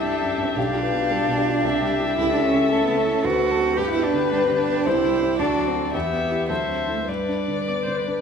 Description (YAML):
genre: quick classical-period movement for piano quintet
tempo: 111 BPM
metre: 3/4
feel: rubato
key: G major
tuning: A4 = 441 Hz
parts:
  - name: dark violin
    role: melody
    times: 0.0-8.2 s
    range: B4 to F5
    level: -26 LUFS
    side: left 7 dB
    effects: none
  - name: dark violin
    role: second line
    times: 0.0-8.2 s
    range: G4 to C5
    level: -28 LUFS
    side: left 6 dB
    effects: none
  - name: warm cello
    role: second line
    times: 0.0-8.2 s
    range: F#3 to G4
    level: -24 LUFS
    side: right 5 dB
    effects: none
  - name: warm concert grand piano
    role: accompaniment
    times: 0.0-8.2 s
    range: B1 to C5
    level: -27 LUFS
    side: right 1 dB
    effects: none
  - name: warm viola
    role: accompaniment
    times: 0.0-8.2 s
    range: F#4 to D5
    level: -29 LUFS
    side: right 1 dB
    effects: none
room: wet recital hall reverb, RT60 1.6 s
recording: minimal, uncompressed stereo recording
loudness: -19 LUFS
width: side -6 dB against mid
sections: 0.0-8.2 A section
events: none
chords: 0.0 C; 0.6 G7/B; 1.6 C; 2.2 A7/C#; 3.2 D7; 3.8 G; 4.9 C; 5.4 D; 5.9 Em; 6.5 D9; 7.1 G